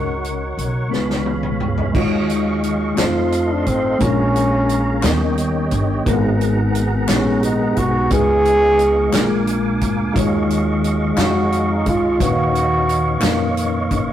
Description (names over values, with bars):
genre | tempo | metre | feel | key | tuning
slow gospel | 58 BPM (dotted quarters) | 6/8 | straight | unclear | A4 = 440 Hz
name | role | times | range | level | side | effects
clear French horn | melody | 0.0-13.6 s | C4 to G#4 | -19 LUFS | right 1 dB | none
mellow tine electric piano | accompaniment | 0.0-14.1 s | G#2 to E#5 | -20 LUFS | left 2 dB | medium stereo tremolo
tonewheel organ | sustained chords | 0.0-14.1 s | B3 to D6 | -26 LUFS | right 2 dB | slow rotary speaker, chorus vibrato
upright bass | bass | 0.0-14.1 s | F#1 to F2 | -22 LUFS | equal | none
natural country drum kit | drums | 0.2-14.1 s | crash cymbal, hi-hat, kick drum, snare drum, toms | -23 LUFS | equal | none
group handclap | percussion | 3.0-13.5 s | none | -30 LUFS | left 2 dB | none
room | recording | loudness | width
moderate stone room reverb, RT60 1.2 s | rough rehearsal-room recording, warm saturation | -15 LUFS | side -11 dB against mid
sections
0.0-2.0 A section; 2.0-14.1 B section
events
drum fill 0.9-2.0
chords
0.0 F#/C#; 0.9 C#7; 2.0 D#m11; 3.0 F7; 4.0 A#m7; 5.0 D#7b13; 6.1 G#m9; 8.1 C#9; 9.1 A#7; 10.2 D#m11; 12.2 Bmaj9#11/D#